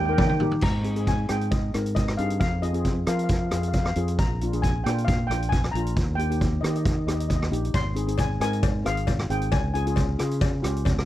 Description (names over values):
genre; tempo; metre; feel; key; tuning
calypso; 135 BPM; 4/4; straight; Ab major; A4 = 439 Hz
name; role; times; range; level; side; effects
steel pan; melody; 0.0-11.0 s; Eb5 to C6; -31 LUFS; left 1 dB; none
steel pan; accompaniment; 0.0-10.9 s; Bb3 to Bb4; -31 LUFS; left 2 dB; none
fingered electric bass; bass; 0.0-11.1 s; Ab1 to F3; -26 LUFS; equal; none
street-band drum kit; drums; 0.2-11.1 s; crash cymbal, hi-hat, kick drum, rim click, toms; -26 LUFS; equal; none
cowbell; percussion; 0.2-0.3, 7.7-11.0 s; none; -35 LUFS; left 17 dB; none
room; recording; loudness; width
little or no reverb; dry, close 1970s-style studio recording; -22 LUFS; side -14 dB against mid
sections
0.6-11.1 A section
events
drum fill 0.0-0.6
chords
0.0 Eb; 0.6 Ab; 2.4 Fm; 4.2 Bb; 6.0 Eb; 7.7 Ab; 9.5 Db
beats
0.19 | 0.63 1.07 1.52 1.96 | 2.41 2.85 3.30 3.74 | 4.19 4.63 5.08 5.53 | 5.97 6.42 6.86 7.30 | 7.75 8.19 8.64 9.08 | 9.53 9.97 10.41 10.86